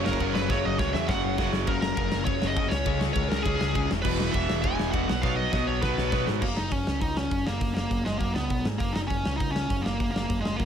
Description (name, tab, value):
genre	punk rock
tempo	202 BPM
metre	4/4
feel	straight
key	F# major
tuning	A4 = 442 Hz
part	crunchy overdriven guitar	riff	0.0-6.4 s	E2 to C#4	-32 LUFS	left 14 dB	none
part	sludgy distorted guitar	riff	0.0-6.3 s	E2 to C#4	-34 LUFS	equal	overdrive
part	tight distorted guitar	riff	0.0-1.7, 4.0-6.4 s	E2 to B3	-31 LUFS	right 14 dB	distortion
part	growling picked electric bass	bass	0.0-10.7 s	E1 to G#2	-31 LUFS	equal	overdrive
part	high-gain lead guitar	melody	0.1-10.7 s	G#3 to G#5	-30 LUFS	equal	distortion
part	big rock drum kit	drums	0.1-10.7 s	crash cymbal, hi-hat, kick drum, ride cymbal, snare drum	-29 LUFS	equal	none
room	light reverb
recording	none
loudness	-24 LUFS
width	side -8 dB against mid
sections	0.0-1.7 A section; 1.7-6.4 B section; 6.4-10.7 C section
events	drum fill 0.5-1.7, 5.2-6.4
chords	0.0 F#5; 1.7 F#; 2.7 C#5; 3.9 E; 5.1 B5; 6.4 F#; 8.5 G#m/B; 8.8 F#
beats	0.21 | 0.51 0.80 1.09 1.39 | 1.69 1.98 2.27 2.57 | 2.87 3.16 3.46 3.75 | 4.05 4.35 4.64 4.94 | 5.23 5.53 5.83 6.12 | 6.42 6.72 7.02 7.32 | 7.61 7.91 8.21 8.51 | 8.81 9.11 9.40 9.70 | 10.00 10.30 10.60